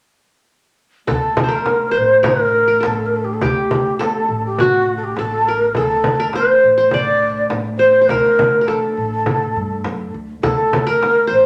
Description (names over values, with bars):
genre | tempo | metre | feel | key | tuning
Arabic maqam ensemble | 103 BPM | 4/4 | straight | D maqam hijaz | A4 = 440 Hz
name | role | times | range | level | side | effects
breathy mellow ney | melody | 1.1-11.5 s | F#4 to D5 | -17 LUFS | equal | none
qanun | second line | 1.1-11.5 s | F#4 to D5 | -24 LUFS | equal | none
upright bass | bass | 1.1-11.5 s | A1 to G2 | -31 LUFS | equal | none
dark cello | drone | 1.1-11.5 s | D2 | -31 LUFS | equal | none
frame drum | percussion | 1.1-11.2 s | none | -24 LUFS | equal | none
room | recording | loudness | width
wet large studio reverb, RT60 0.8 s | none | -16 LUFS | mono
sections
1.1-11.5 A section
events
none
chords
none